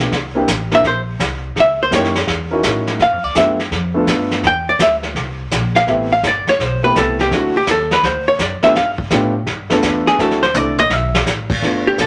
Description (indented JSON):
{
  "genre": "jazz, small-group swing and bop",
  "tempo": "167 BPM",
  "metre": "4/4",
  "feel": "swing 65% on 8ths",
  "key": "G mixolydian",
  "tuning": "A4 = 440 Hz",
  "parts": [
    { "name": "warm grand piano", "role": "accompaniment", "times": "0.0-12.1 s", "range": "A3 to Bb4", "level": "-21 LUFS", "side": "equal", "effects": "none" },
    { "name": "upright bass", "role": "bass", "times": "0.0-12.1 s", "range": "G1 to A2", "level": "-26 LUFS", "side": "equal", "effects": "none" },
    { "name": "vintage brush drum kit", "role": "drums", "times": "0.1-12.1 s", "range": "brushed snare drum, crash cymbal, hi-hat, kick drum, snare drum, toms", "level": "-22 LUFS", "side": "equal", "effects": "none" },
    { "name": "archtop guitar, miked and amplified", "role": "melody", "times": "0.7-12.1 s", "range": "F#4 to G5", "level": "-17 LUFS", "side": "equal", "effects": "none" }
  ],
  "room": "moderate studio reverb, RT60 0.6 s",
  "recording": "none",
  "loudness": "-16 LUFS",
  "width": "mono",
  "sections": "0.0-11.6 A section",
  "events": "hollow-body jazz guitar solo 0.0-11.6; drum fill 10.5-11.3",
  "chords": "0.1 C9; 1.6 C#dim7; 3.0 G9; 4.4 Bbadd9; 5.9 Am7; 7.3 D9; 8.7 G9; 10.2 D9",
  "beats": "| 0.12 0.48 0.84 1.20 | 1.56 1.92 2.28 2.64 | 3.00 3.36 3.72 4.08 | 4.44 4.80 5.16 5.51 | 5.88 6.23 6.59 6.95 | 7.31 7.67 8.03 8.39 | 8.75 9.11 9.47 9.82 | 10.18 10.54 10.90 11.26 | 11.62 11.98"
}